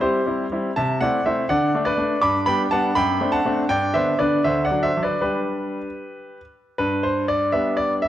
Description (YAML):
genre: classical-period piano sonatina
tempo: 81 BPM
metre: 2/4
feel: rubato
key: G major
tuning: A4 = 440 Hz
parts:
  - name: bright grand piano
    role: solo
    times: 0.0-8.1 s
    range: D2 to D6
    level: -19 LUFS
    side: equal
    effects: none
room: wet recital hall reverb, RT60 1.5 s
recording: worn, warbling old tape, cassette tape, warbly pitch drift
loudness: -19 LUFS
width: side -12 dB against mid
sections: 0.0-6.8 A section; 6.8-8.1 B section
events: none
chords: 0.0 C; 0.8 Am/C; 1.5 D; 2.2 G; 3.0 D7/F#; 3.7 G; 4.4 D; 5.2 G